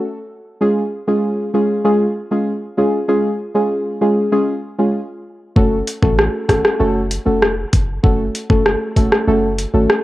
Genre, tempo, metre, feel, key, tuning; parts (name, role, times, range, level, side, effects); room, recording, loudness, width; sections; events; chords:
dancehall; 97 BPM; 4/4; straight; F# harmonic minor; A4 = 440 Hz
deep mellow chord stab; accompaniment; 0.0-10.0 s; G#3 to A4; -16 LUFS; equal; chorus
punchy sub bass; bass; 5.6-9.9 s; E#1 to A1; -21 LUFS; equal
island pop drum kit; drums; 5.6-10.0 s; hi-hat, kick drum, rim click; -15 LUFS; equal; overdrive, cassette tape
light reverb; home recording on cassette; -14 LUFS; side -16 dB against mid
0.0-10.0 A section
0.0 N.C.; 0.6 C#; 5.6 F#m